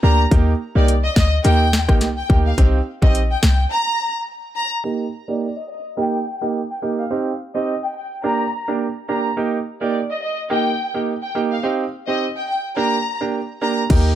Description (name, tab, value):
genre	dancehall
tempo	106 BPM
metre	4/4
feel	swing 56% on 16ths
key	Eb major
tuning	A4 = 441 Hz
part	warm studio violin section	melody	0.0-13.8 s	D5 to Bb5	-23 LUFS	left 1 dB	low-pass filter, ping-pong delay
part	clear grand piano	accompaniment	0.0-14.1 s	Bb3 to G4	-22 LUFS	right 4 dB	low-pass filter
part	short 808-style bass	bass	0.0-3.7, 13.9-14.1 s	Bb1 to Eb2	-16 LUFS	left 1 dB	none
part	island pop drum kit	drums	0.3-3.6, 13.9-14.0 s	crash cymbal, hi-hat, kick drum, rim click, snare drum	-16 LUFS	left 1 dB	none
room	digital ambience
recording	none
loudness	-17 LUFS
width	side -12 dB against mid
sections	0.0-4.8 A section; 4.8-13.9 B section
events	break 3.7-4.8; filter sweep 4.8-13.9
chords	0.3 Eb; 2.6 Cm; 3.7 N.C.; 4.8 Eb; 7.1 Cm; 8.2 Gm; 9.4 Eb; 11.6 Cm; 12.8 Gm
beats	| 0.32 0.88 1.45 2.01 | 2.58 3.15 3.71 4.28 | 4.84 5.41 5.97 6.54 | 7.11 7.67 8.24 8.81 | 9.37 9.94 10.50 11.07 | 11.64 12.20 12.77 13.33 | 13.90